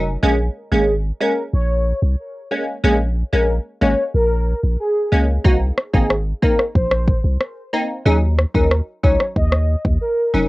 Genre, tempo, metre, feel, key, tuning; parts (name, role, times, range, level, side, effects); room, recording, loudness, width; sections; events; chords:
dancehall; 92 BPM; 4/4; straight; Bb minor; A4 = 440 Hz
warm velvety synth lead; melody; 0.0-10.5 s; Gb4 to Eb5; -21 LUFS; equal; chorus, cassette tape, analog delay
wavetable chord stab; accompaniment; 0.0-10.5 s; Gb3 to Eb4; -20 LUFS; equal; cassette tape
punchy sub bass; bass; 0.0-10.5 s; F1 to Eb2; -18 LUFS; equal
deep house drum kit; drums; 5.4-10.0 s; kick drum, rim click; -17 LUFS; equal; cassette tape
little or no reverb; home recording on cassette; -16 LUFS; side -20 dB against mid
0.0-10.5 A section
0.2 Bbm7; 5.4 Abadd9; 8.1 Ebm7